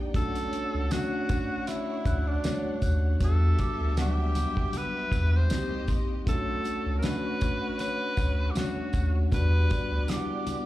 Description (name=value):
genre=lush 1970s-style soul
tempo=78 BPM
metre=4/4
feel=swing 54% on 16ths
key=B minor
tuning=A4 = 440 Hz
part: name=warm studio string section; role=second line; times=0.0-10.7 s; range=A3 to G5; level=-40 LUFS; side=right 1 dB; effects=slapback echo, tape echo
part: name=mellow tine electric piano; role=accompaniment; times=0.0-10.7 s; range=F#3 to F#5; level=-33 LUFS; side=left 2 dB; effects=fast stereo tremolo, slapback echo
part: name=round analog bass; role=bass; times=0.0-10.1 s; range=Bb1 to E2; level=-26 LUFS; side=equal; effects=none
part: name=damped 70s drum kit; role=drums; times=0.1-10.7 s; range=hi-hat, kick drum, snare drum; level=-30 LUFS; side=equal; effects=none
part: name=congas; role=percussion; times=0.1-10.7 s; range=none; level=-41 LUFS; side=right 2 dB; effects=none
part: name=breathy tenor saxophone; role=melody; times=0.2-10.6 s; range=D4 to C5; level=-33 LUFS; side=equal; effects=slapback echo, tape echo
part: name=tambourine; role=percussion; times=0.9-10.7 s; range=none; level=-49 LUFS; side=right 3 dB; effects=none
part: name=celesta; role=texture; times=2.1-10.7 s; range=C6 to F#6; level=-43 LUFS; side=right 2 dB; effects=stereo widening
room=little or no reverb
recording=live gig heard through the venue's PA, club reverb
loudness=-25 LUFS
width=side -15 dB against mid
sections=0.0-10.7 A section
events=none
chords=0.1 Bm9 (rootless); 3.2 Em7; 5.5 Cm7; 6.3 Bm9; 9.3 Em7